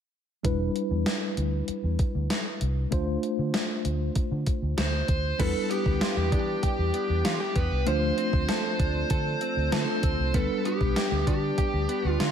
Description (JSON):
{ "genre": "1980s-style pop", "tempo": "97 BPM", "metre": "4/4", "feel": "straight", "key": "unclear", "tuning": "A4 = 441 Hz", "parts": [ { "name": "mellow tine electric piano", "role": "accompaniment", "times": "0.4-12.3 s", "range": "G3 to C5", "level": "-30 LUFS", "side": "left 1 dB", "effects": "medium stereo tremolo" }, { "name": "vintage muted fingered electric bass", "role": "bass", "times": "0.4-12.3 s", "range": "E1 to E3", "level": "-28 LUFS", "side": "equal", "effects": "none" }, { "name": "gated 80s digital drum machine", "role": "drums", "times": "0.4-12.3 s", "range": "crash cymbal, hi-hat, kick drum, snare drum", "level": "-28 LUFS", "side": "equal", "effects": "gated reverb, gated reverb snare" }, { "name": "bluesy overdriven lead guitar", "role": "melody", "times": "4.8-12.3 s", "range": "G4 to C5", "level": "-30 LUFS", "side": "left 1 dB", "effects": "distortion, digital delay" }, { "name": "direct-recorded clean electric guitar", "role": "riff", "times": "5.4-12.3 s", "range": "F3 to A4", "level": "-34 LUFS", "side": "right 5 dB", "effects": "analog chorus, digital delay" } ], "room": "light reverb", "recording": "none", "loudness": "-24 LUFS", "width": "side -8 dB against mid", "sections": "0.4-5.4 A section; 5.4-12.3 B section", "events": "none", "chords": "0.4 Em7; 2.9 Dm7; 5.4 Em7; 7.9 Dm7; 10.3 G", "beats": "| 0.45 1.07 1.68 2.30 | 2.92 3.54 4.16 4.78 | 5.40 6.01 6.63 7.25 | 7.87 8.49 9.11 9.73 | 10.34 10.96 11.58 12.20" }